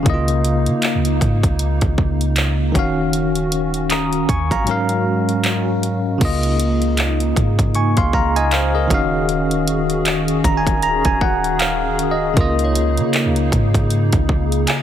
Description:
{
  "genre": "contemporary R&B",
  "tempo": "78 BPM",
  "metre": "4/4",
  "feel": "swing 58% on 16ths",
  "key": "Db major",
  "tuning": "A4 = 440 Hz",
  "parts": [
    { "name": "bell-like tine electric piano", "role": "accompaniment", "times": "0.0-14.8 s", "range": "Ab2 to Eb6", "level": "-19 LUFS", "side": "left 1 dB", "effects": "medium stereo tremolo" },
    { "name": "hollow soft pad", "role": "sustained chords", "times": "0.0-14.8 s", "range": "Db3 to F5", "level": "-23 LUFS", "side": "equal", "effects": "ensemble chorus, sidechain pumping" },
    { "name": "clean 808-style bass", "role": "bass", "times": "0.0-14.7 s", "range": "Db1 to Db3", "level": "-20 LUFS", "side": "equal", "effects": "none" },
    { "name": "trap drum kit", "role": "drums", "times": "0.1-14.8 s", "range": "crash cymbal, handclaps, hi-hat, kick drum", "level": "-20 LUFS", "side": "equal", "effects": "none" },
    { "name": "glassy synth bell", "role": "texture", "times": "12.4-14.8 s", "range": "Bb4 to Ab5", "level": "-30 LUFS", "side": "left 2 dB", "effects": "chorus, digital delay" }
  ],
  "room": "little or no reverb",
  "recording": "heavily compressed radio sound",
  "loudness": "-15 LUFS",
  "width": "side -10 dB against mid",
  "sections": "0.0-6.2 A section; 6.2-14.8 B section",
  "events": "kick muted 4.7-6.2; tine electric piano fill 10.1-12.4",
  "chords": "0.1 Db69; 2.8 Ebm9; 4.7 Ab13sus4; 6.2 Db69; 8.9 Ebm9; 12.4 Db69"
}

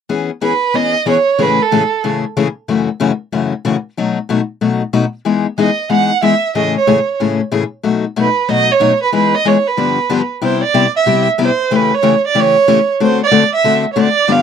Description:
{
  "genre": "jazz",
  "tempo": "186 BPM",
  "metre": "4/4",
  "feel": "swing 61% on 8ths",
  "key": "E major, C major from 10.4 s",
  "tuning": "A4 = 439 Hz",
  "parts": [
    { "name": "picked steel-string acoustic guitar", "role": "accompaniment", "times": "0.1-14.4 s", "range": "F#2 to A4", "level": "-14 LUFS", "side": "left 6 dB", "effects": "none" },
    { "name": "warm violin", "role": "melody", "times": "0.4-2.0, 5.6-14.4 s", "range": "A4 to F#5", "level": "-13 LUFS", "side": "right 6 dB", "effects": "none" }
  ],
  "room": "light reverb",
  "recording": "dry, close 1970s-style studio recording",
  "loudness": "-12 LUFS",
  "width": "side -7 dB against mid",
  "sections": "0.1-10.4 A section; 10.4-14.4 B section",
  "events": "none",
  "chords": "0.1 E6; 1.4 Amaj7; 2.7 F#m7; 4.0 B7; 5.3 Emaj7; 6.5 Amaj7; 7.8 B7; 9.1 Emaj7; 9.8 G7; 10.4 Cmaj7; 11.7 A7/C#; 13.0 D7"
}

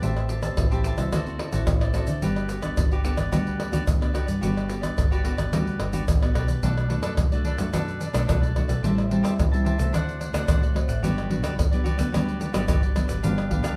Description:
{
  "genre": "samba and choro",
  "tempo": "109 BPM",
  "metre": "4/4",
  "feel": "straight",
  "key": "G major",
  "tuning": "A4 = 442 Hz",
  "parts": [
    { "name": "cavaquinho", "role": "accompaniment", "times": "0.0-13.7 s", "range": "D4 to A5", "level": "-36 LUFS", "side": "equal", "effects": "none" },
    { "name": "nylon-string guitar", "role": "accompaniment", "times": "0.0-13.8 s", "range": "F#2 to B4", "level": "-32 LUFS", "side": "equal", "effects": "none" },
    { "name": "vintage muted fingered electric bass", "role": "bass", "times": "0.0-13.8 s", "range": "G1 to D3", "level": "-30 LUFS", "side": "equal", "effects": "none" },
    { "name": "tube shaker, surdo, pandeiro and tamborim", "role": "percussion", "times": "0.0-13.8 s", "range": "none", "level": "-27 LUFS", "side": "equal", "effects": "none" }
  ],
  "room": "wet studio reverb, RT60 0.8 s",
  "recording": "heard from further back in the room",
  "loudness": "-24 LUFS",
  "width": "mono",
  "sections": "0.0-6.6 A section; 6.6-13.8 B section",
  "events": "none",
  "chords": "0.0 Am9; 1.1 D9; 2.2 Gmaj7; 6.6 Bm7; 8.8 Am7; 9.9 D7; 11.0 Gmaj7; 13.2 G7"
}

